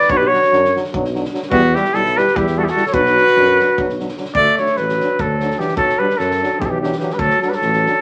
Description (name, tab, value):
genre	balkan folk, Balkan brass band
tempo	296 BPM (eighths)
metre	7/8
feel	straight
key	B minor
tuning	A4 = 439 Hz
part	mellow trumpet	melody	0.0-8.0 s	F#4 to D5	-17 LUFS	equal	none
part	clear alto saxophone	second line	0.0-8.0 s	D3 to B4	-24 LUFS	equal	none
part	loose indie drum kit	percussion	0.0-7.9 s	kick drum, snare drum	-32 LUFS	equal	none
part	clear euphonium	accompaniment	0.1-7.9 s	F#3 to G3	-28 LUFS	equal	none
part	warm French horn	accompaniment	0.1-7.9 s	D4 to E4	-30 LUFS	equal	none
part	mellow tuba	bass	0.1-7.9 s	A1 to F#2	-26 LUFS	equal	none
room	wet studio reverb, RT60 0.8 s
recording	vinyl crackle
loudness	-16 LUFS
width	mono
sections	0.0-4.4 A section; 4.4-8.0 B section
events	none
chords	0.0 Bm; 1.5 Em; 2.9 Bm; 4.4 D; 5.8 Bm; 7.2 D